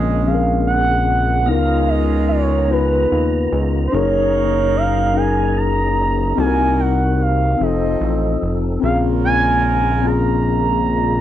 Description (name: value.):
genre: R&B.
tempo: 49 BPM (dotted quarters).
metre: 6/8.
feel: straight.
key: unclear.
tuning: A4 = 441 Hz.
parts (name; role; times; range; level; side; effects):
gliding portamento lead; melody; 0.0-11.2 s; Cb5 to Bb5; -20 LUFS; right 2 dB; chorus, slapback echo.
mellow tine electric piano; accompaniment; 0.0-11.2 s; F3 to Cb5; -20 LUFS; left 7 dB; medium stereo tremolo.
percussive tonewheel organ; sustained chords; 0.0-11.2 s; C3 to Bb5; -29 LUFS; right 4 dB; overdrive, chorus vibrato, slow rotary speaker.
mellow horn section; stabs; 0.0-10.8 s; F3 to C5; -27 LUFS; right 14 dB; none.
fat analog bass; bass; 0.0-11.2 s; F1 to Eb2; -19 LUFS; equal; none.
room: little or no reverb.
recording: dry, close 1970s-style studio recording.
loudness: -15 LUFS.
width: side -11 dB against mid.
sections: 0.0-11.2 A section.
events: none.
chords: 0.0 Bbm9; 1.5 Db13; 3.9 Gb69; 6.4 Cm7b5; 7.6 F7; 8.8 Bbm9.